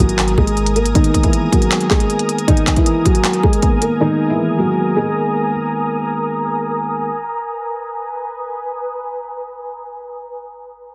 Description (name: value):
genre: hip hop, trap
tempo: 157 BPM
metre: 4/4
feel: half-time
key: G# minor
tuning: A4 = 440 Hz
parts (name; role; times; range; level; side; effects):
- felt-muted upright piano; melody; 0.0-5.5 s; D#3 to A#4; -20 LUFS; equal; low-pass filter, tape echo
- soft electric-piano-like synth keys; accompaniment; 0.0-7.1 s; D#3 to G#4; -24 LUFS; equal; chorus, low-pass filter
- ethereal airy pad; sustained chords; 0.0-10.1 s; A#4 to D#6; -25 LUFS; equal; ensemble chorus, built-in reverb, low-pass filter
- clean 808-style bass; bass; 0.0-0.9 s; G#1; -21 LUFS; equal; none
- trap drum kit; drums; 0.0-3.9 s; handclaps, hi-hat, kick drum; -18 LUFS; equal; none
room: light reverb, digital ambience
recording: heavily compressed radio sound, multiband compression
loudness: -17 LUFS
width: mono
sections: 0.0-10.1 A section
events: filter sweep 0.0-10.1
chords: 0.0 G#madd9